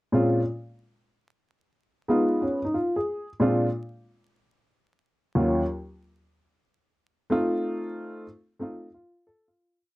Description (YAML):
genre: hip hop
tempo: 92 BPM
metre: 4/4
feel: swing 66% on 16ths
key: unclear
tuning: A4 = 441 Hz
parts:
  - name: dark upright piano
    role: solo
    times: 0.1-9.8 s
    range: Eb2 to A4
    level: -23 LUFS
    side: equal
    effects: none
room: light reverb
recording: dry, close 1970s-style studio recording, vinyl crackle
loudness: -23 LUFS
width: side -19 dB against mid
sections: 0.0-9.6 head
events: fade-out 7.0-9.6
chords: 0.0 Bbm7; 1.8 Fm7b5; 3.1 Bb7; 4.4 Ebm7; 7.0 F7